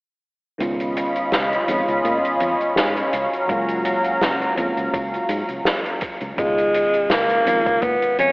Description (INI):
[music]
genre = vaporwave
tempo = 83 BPM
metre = 4/4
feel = swing 55% on 16ths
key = unclear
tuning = A4 = 436 Hz
[part]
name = mellow FM electric piano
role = accompaniment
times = 0.6-8.3 s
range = B2 to E#4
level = -27 LUFS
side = equal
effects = wide subtle chorus, tape echo
[part]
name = lush unison pad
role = sustained chords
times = 0.6-6.4 s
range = F#3 to B5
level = -22 LUFS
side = equal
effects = chorus
[part]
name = fingered electric bass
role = bass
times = 0.6-8.3 s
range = C#2 to A#2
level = -30 LUFS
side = equal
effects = none
[part]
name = soft-mallet drum kit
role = drums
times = 0.6-8.3 s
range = hi-hat, snare drum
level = -24 LUFS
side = equal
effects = vintage 12-bit sampler grit, small room reverb, gated reverb
[part]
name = electronic kick drum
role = drums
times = 3.5-8.0 s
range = none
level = -28 LUFS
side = equal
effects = overdrive, vintage 12-bit sampler grit, small room reverb
[part]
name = clear tenor saxophone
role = melody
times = 6.4-8.3 s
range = G#3 to C#4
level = -17 LUFS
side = equal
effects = none
[sound]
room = moderate plate reverb, RT60 2.8 s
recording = telephone sound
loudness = -18 LUFS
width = side -28 dB against mid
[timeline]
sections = 0.6-6.4 A section; 6.4-8.3 B section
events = none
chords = 0.6 C#9; 3.1 F#maj7/C#; 6.4 C#9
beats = | 0.60 1.32 2.05 2.77 | 3.49 4.21 4.94 5.66 | 6.38 7.11 7.83